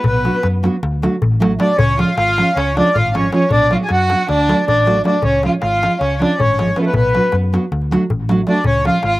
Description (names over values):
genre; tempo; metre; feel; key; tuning
balkan folk, Balkan wedding band; 314 BPM (eighths); 9/8; straight; C# phrygian dominant; A4 = 440 Hz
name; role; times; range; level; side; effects
accordion; melody; 0.0-9.2 s; A4 to G#5; -17 LUFS; left 1 dB; slapback echo
clear violin; second line; 0.0-9.2 s; A3 to G#4; -22 LUFS; right 2 dB; slapback echo
darbuka; percussion; 0.0-9.2 s; none; -20 LUFS; left 2 dB; none
hollow-body short-scale fingered electric bass; bass; 0.1-9.2 s; G#1 to F#2; -20 LUFS; equal; none
nylon-string guitar; accompaniment; 0.2-9.0 s; E#3 to F#4; -18 LUFS; right 2 dB; none
room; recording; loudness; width
little or no reverb; recorded outdoors, with no room sound; -13 LUFS; side -18 dB against mid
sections
0.0-9.2 A section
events
none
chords
0.1 Bm; 0.8 D; 1.8 C#; 3.5 Bm; 4.3 D; 5.2 C#; 6.9 Bm; 7.7 D; 8.6 C#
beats
| 0.05 0.25 0.44 0.63 0.82 1.01 1.21 1.40 1.59 | 1.78 1.98 2.17 2.36 2.55 2.74 2.93 3.12 3.32 | 3.51 3.70 3.89 4.08 4.27 4.46 4.65 4.84 5.04 | 5.23 5.42 5.61 5.80 5.99 6.18 6.37 6.56 6.75 | 6.94 7.13 7.32 7.51 7.70 7.89 8.08 8.27 8.46 | 8.65 8.84 9.03